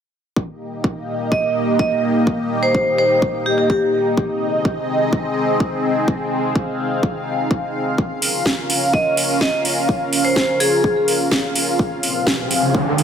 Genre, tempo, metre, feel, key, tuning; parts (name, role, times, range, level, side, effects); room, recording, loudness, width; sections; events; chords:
EDM, festival progressive house; 126 BPM; 4/4; straight; A4 = 442 Hz
lush unison pad; sustained chords; 0.6-13.0 s; Bb3 to F5; -20 LUFS; equal; chorus, phaser, sidechain pumping
electronic kick drum; drums; 0.4-12.8 s; -20 LUFS; equal; high-pass filter on kick, high-pass filter on room
vibraphone with hard mallets; melody; 1.3-4.1, 8.9-11.1 s; G4 to Eb5; -19 LUFS; equal; dub echo
house drum kit; drums; 8.2-13.0 s; hi-hat, snare drum; -20 LUFS; right 1 dB
riser; sound effects; 12.1-13.0 s; -21 LUFS; right 1 dB
moderate lush hall reverb, RT60 2.0 s; -16 LUFS; side -8 dB against mid
0.4-13.0 A section
riser 12.1-13.0
0.4 Eb; 4.2 Ab; 8.0 Bbm; 11.8 Fm